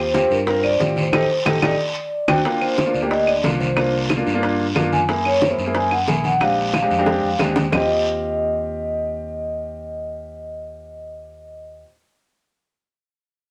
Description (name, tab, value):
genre	Afro-Cuban jazz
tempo	182 BPM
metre	4/4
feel	straight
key	Eb major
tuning	A4 = 443 Hz
part	vibraphone with medium mallets	melody	0.0-11.8 s	Bb4 to Ab5	-24 LUFS	equal	none
part	warm grand piano	accompaniment	0.0-11.8 s	Ab3 to Bb4	-26 LUFS	equal	none
part	fingered electric bass	bass	0.0-11.8 s	A1 to A2	-31 LUFS	equal	none
part	bongos	percussion	0.1-7.8 s	none	-27 LUFS	equal	none
part	congas	percussion	0.1-7.8 s	none	-29 LUFS	equal	none
part	guiro	percussion	0.1-7.8 s	none	-32 LUFS	equal	none
part	claves	percussion	0.6-7.8 s	none	-29 LUFS	equal	none
room	wet studio reverb, RT60 0.7 s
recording	none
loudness	-20 LUFS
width	mono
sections	0.0-2.4 A section; 2.4-7.7 B section; 7.7-10.4 C section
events	band accent 1.1-2.4; drum fill 1.5-2.4, 6.7-7.7; grand piano fill 2.0-2.4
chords	0.0 Eb69; 1.1 Am7b5; 1.8 D7; 2.4 Gm7; 3.8 C9sus4; 5.1 Gb9; 6.4 Bb13; 7.7 Eb69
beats	0.14 0.47 0.80 | 1.13 1.46 1.79 2.12 | 2.45 2.78 3.11 3.44 | 3.77 4.10 4.43 4.76 | 5.09 5.42 5.75 6.08 | 6.41 6.74 7.07 7.40 | 7.73 8.06 8.39 8.72 | 9.05 9.38 9.71 10.04